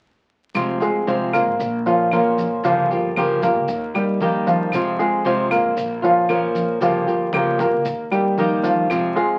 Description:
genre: latin, Cuban son and guajira.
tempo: 115 BPM.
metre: 4/4.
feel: straight.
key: F minor.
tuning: A4 = 440 Hz.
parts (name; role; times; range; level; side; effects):
flamenco guitar; accompaniment; 0.5-9.4 s; C3 to G4; -24 LUFS; equal; none.
upright bass; bass; 0.5-9.4 s; F1 to F2; -35 LUFS; equal; none.
maracas; percussion; 0.5-9.4 s; none; -44 LUFS; equal; none.
claves; percussion; 0.6-9.2 s; none; -30 LUFS; equal; none.
congas; percussion; 0.6-9.4 s; none; -32 LUFS; equal; none.
clear baby grand piano; arpeggios; 0.8-9.4 s; F3 to C5; -22 LUFS; equal; none.
room: wet club reverb, RT60 0.6 s.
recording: very old 78 rpm record, vinyl crackle.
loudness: -20 LUFS.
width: mono.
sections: 0.6-9.4 A section.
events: none.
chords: 0.6 Fm; 1.6 Bbm; 2.6 Gm7b5; 3.7 Eb; 4.7 Fm; 5.8 Bbm; 6.8 Gm7b5; 7.9 Eb.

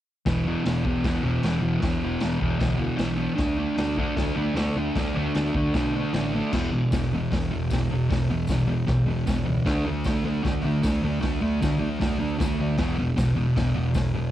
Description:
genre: garage rock duo or trio.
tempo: 153 BPM.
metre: 4/4.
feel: straight.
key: unclear.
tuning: A4 = 441 Hz.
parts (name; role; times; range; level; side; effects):
thick fuzz guitar; riff; 0.3-14.3 s; E2 to D4; -24 LUFS; equal; distortion, cassette tape.
growling picked electric bass; bass; 0.3-14.3 s; E1 to B2; -31 LUFS; equal; overdrive.
raw garage drum kit; drums; 0.3-14.0 s; crash cymbal, hi-hat, kick drum, snare drum; -28 LUFS; equal; none.
tambourine; percussion; 6.9-14.0 s; none; -46 LUFS; left 4 dB; none.
room: light reverb.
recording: home recording on cassette.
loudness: -22 LUFS.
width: side -12 dB against mid.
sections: 0.2-6.5 A section; 6.5-14.3 B section.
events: none.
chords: 0.2 E5; 3.4 D5; 6.5 E5; 9.7 D5; 12.8 E5.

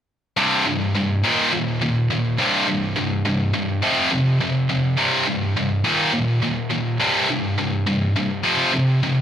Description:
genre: rock.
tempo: 104 BPM.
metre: 4/4.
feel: straight.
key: C minor.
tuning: A4 = 441 Hz.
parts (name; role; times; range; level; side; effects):
heavy high-gain guitar; solo; 0.4-9.2 s; C2 to F3; -18 LUFS; equal; distortion, digital delay.
room: wet large studio reverb, RT60 0.8 s.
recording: none.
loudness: -18 LUFS.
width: side -9 dB against mid.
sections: 0.4-9.2 A section.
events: none.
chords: 0.4 C5; 1.2 Eb5; 2.4 C5; 3.8 F5; 5.0 C5; 5.8 Eb5; 7.0 C5; 8.4 F5.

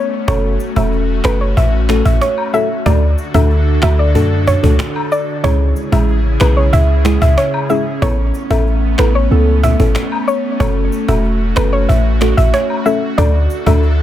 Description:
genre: dancehall.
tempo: 93 BPM.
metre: 4/4.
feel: straight.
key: unclear.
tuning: A4 = 440 Hz.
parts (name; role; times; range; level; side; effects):
soft round pluck; melody; 0.0-13.8 s; B4 to E5; -19 LUFS; equal; chorus, digital delay.
airy breathy pad; sustained chords; 0.0-14.0 s; C#3 to A4; -21 LUFS; left 1 dB; chorus.
deep mellow chord stab; accompaniment; 0.3-13.8 s; G#3 to A4; -19 LUFS; right 1 dB; chorus.
warm 808-style bass; bass; 0.3-14.0 s; E1 to F#2; -13 LUFS; equal; none.
cajon; drums; 0.3-13.9 s; none; -22 LUFS; equal; none.
woodblock and cabasa; percussion; 0.3-13.8 s; none; -28 LUFS; left 5 dB; none.
room: studio reverb.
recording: dense, heavily limited modern master.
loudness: -11 LUFS.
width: side -12 dB against mid.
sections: 0.0-14.0 A section.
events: none.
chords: 0.3 F#m; 2.9 D; 5.4 C#m; 8.0 Aadd9; 10.6 F#m; 13.2 D.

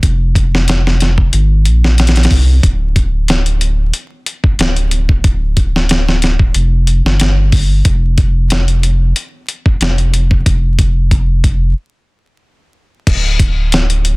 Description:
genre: trip hop.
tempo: 92 BPM.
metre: 4/4.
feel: swing 54% on 16ths.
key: unclear.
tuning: A4 = 435 Hz.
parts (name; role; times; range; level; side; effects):
round analog bass; bass; 0.0-14.2 s; D1 to C2; -12 LUFS; equal; none.
dusty soul sampler-style drum kit; drums; 0.0-14.2 s; crash cymbal, hi-hat, kick drum, snare drum; -13 LUFS; equal; none.
room: digital ambience.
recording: dense, heavily limited modern master, vinyl crackle.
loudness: -10 LUFS.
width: side -26 dB against mid.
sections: 0.0-13.1 A section; 13.1-14.2 B section.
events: stop 11.8-13.1.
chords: none.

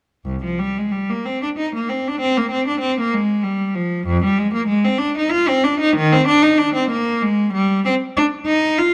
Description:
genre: classical, baroque-style suite movement for unaccompanied cello.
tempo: 64 BPM (dotted quarters).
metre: 6/8.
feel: rubato.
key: C minor.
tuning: A4 = 440 Hz.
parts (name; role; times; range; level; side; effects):
rich cello; solo; 0.3-8.9 s; C2 to F4; -18 LUFS; equal; none.
room: moderate scoring stage reverb, RT60 1.7 s.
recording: close, detailed microphones.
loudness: -19 LUFS.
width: mono.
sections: 0.3-8.9 A section.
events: none.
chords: none.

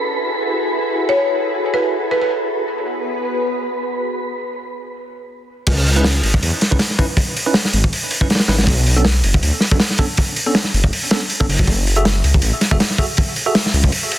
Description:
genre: drum and bass, jungle.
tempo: 160 BPM.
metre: 4/4.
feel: swing 55% on 16ths.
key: C# minor.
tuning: A4 = 440 Hz.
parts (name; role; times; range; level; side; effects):
soft string machine; sustained chords; 0.0-4.2 s; B3 to B4; -22 LUFS; left 1 dB; ensemble chorus.
wind-like tuned noise texture; texture; 0.0-4.2 s; B4 to B5; -25 LUFS; right 2 dB; built-in reverb.
buzzing marimba with hard mallets; melody; 1.1-2.3 s; B4 to C#5; -20 LUFS; equal; vintage 12-bit sampler grit, dub echo.
dark detuned saw bass; bass; 5.7-13.9 s; F#1 to E2; -16 LUFS; equal; tube saturation.
crunchy breakbeat drum kit; drums; 5.7-14.2 s; crash cymbal, hi-hat, kick drum, snare drum; -16 LUFS; equal; none.
bell-like tine electric piano; stabs; 6.0-13.5 s; B3 to E5; -24 LUFS; right 2 dB; fast stereo tremolo, dub echo.
room: light reverb, studio ambience.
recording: dense, heavily limited modern master.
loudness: -15 LUFS.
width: side -13 dB against mid.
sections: 0.0-5.7 A section; 5.7-14.2 B section.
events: break 4.2-5.7; drop 5.7-14.2.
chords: 0.0 F#m9; 2.7 G#m7; 5.7 C#m9; 8.7 Bm9; 11.7 F#m9.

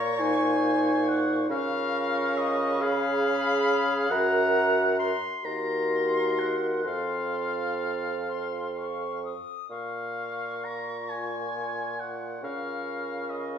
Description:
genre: classical, slow romantic movement for wind quintet.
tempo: 42-47 BPM (dotted quarters).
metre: 6/8.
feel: rubato.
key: Bb minor.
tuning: A4 = 442 Hz.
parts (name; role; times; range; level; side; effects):
silver concert flute; melody; 0.0-13.6 s; Bb5 to Eb6; -34 LUFS; left 3 dB; none.
clear oboe; second line; 0.0-13.6 s; Eb5 to C6; -30 LUFS; left 3 dB; none.
mellow French horn; accompaniment; 0.0-13.6 s; Eb4 to Ab4; -32 LUFS; right 1 dB; none.
warm clarinet; accompaniment; 0.0-13.6 s; F4 to Db5; -34 LUFS; right 2 dB; none.
warm bassoon; bass; 0.0-13.6 s; Eb2 to Db3; -30 LUFS; right 1 dB; none.
room: wet stone room reverb, RT60 1.2 s.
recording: heard from further back in the room.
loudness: -25 LUFS.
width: side -8 dB against mid.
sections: 0.0-13.6 A section.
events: none.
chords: 0.0 Bbm; 1.5 Bbm/Db; 2.8 Db7; 4.1 Gb; 5.4 Cm7b5/Eb; 6.9 F; 9.7 Bbm; 12.4 Bbm/Db.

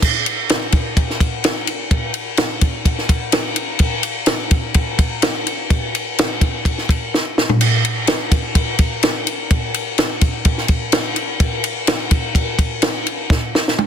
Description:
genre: rock.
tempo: 126 BPM.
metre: 4/4.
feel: straight.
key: none.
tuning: none.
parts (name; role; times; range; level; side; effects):
compact cocktail drum kit; drums; 0.0-13.9 s; crash cymbal, kick drum, ride cymbal, snare drum, toms; -16 LUFS; equal; none.
room: light reverb.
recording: dense, heavily limited modern master.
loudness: -16 LUFS.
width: side -8 dB against mid.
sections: 0.0-13.9 A section.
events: drum fill 7.1-7.6, 13.3-13.9.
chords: none.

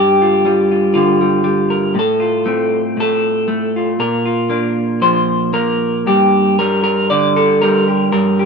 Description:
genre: folk, solo fingerstyle acoustic guitar.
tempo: 118 BPM.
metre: 4/4.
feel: rubato.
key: G minor.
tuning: A4 = 440 Hz.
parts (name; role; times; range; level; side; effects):
electric guitar through a small old amp; solo; 0.0-8.5 s; G2 to D5; -12 LUFS; equal; none.
room: light reverb.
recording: minimal, uncompressed stereo recording.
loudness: -12 LUFS.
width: side -5 dB against mid.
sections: 0.0-8.5 A section.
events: none.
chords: 0.0 G7(no3); 2.0 F/A; 4.0 Bb; 6.1 Gm.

